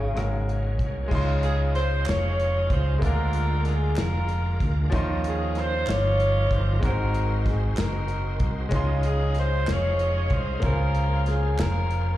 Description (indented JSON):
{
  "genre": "slow gospel",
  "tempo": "63 BPM (dotted quarters)",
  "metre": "6/8",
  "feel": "straight",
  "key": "Db major",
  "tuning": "A4 = 440 Hz",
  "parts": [
    { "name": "breathy tenor saxophone", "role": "melody", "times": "0.0-0.8 s", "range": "Db3", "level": "-33 LUFS", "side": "left 2 dB", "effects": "slapback echo" },
    { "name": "bright grand piano", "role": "accompaniment", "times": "0.0-12.2 s", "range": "Ab2 to C6", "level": "-32 LUFS", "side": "left 1 dB", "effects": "slapback echo" },
    { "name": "bright tonewheel organ", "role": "sustained chords", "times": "0.0-12.2 s", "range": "F3 to Eb5", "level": "-37 LUFS", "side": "right 5 dB", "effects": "fast rotary speaker, overdrive, chorus vibrato" },
    { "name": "fingered electric bass", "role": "bass", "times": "0.0-12.2 s", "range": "F1 to Eb2", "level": "-24 LUFS", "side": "equal", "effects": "none" },
    { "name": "warm soul drum kit", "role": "drums", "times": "0.2-12.1 s", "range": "crash cymbal, hi-hat, kick drum, rim click, snare drum", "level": "-29 LUFS", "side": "equal", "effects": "none" },
    { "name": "mellow horn section", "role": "melody", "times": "1.4-12.2 s", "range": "Eb4 to Db5", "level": "-28 LUFS", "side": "equal", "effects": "slapback echo, tape echo" },
    { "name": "group handclap", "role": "percussion", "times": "2.1-11.9 s", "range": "none", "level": "-39 LUFS", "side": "right 5 dB", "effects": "slapback echo" }
  ],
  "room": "little or no reverb",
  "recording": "live gig heard through the venue's PA, club reverb",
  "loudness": "-22 LUFS",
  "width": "side -14 dB against mid",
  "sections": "0.0-1.1 A section; 1.1-12.2 B section",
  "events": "none",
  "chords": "0.2 Ab9sus4; 1.1 Dbmaj9; 3.0 Bb7/D; 4.9 Eb13; 6.8 Ab7; 8.7 Dbmaj9; 10.6 Bbm9/Db",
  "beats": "0.16 | 1.11 2.07 | 3.02 3.97 | 4.92 5.88 | 6.83 7.78 | 8.73 9.68 | 10.63 11.59"
}